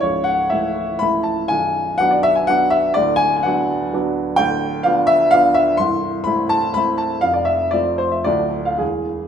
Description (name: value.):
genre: classical, romantic triple-time dance for piano with dotted rhythms.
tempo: 101-135 BPM.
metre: 3/4.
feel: rubato.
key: A minor from 4.4 s.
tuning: A4 = 443 Hz.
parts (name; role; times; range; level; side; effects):
warm baby grand piano; solo; 0.0-9.3 s; B0 to C6; -15 LUFS; equal; none.
room: wet recital hall reverb, RT60 1.6 s.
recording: minimal, uncompressed stereo recording.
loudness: -15 LUFS.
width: side -8 dB against mid.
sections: 0.0-9.3 A section.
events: none.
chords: 0.0 A/C#; 1.5 Bm; 3.0 Bm/D; 4.4 Bdim/D; 5.8 Am/C; 7.2 F; 8.3 Dm.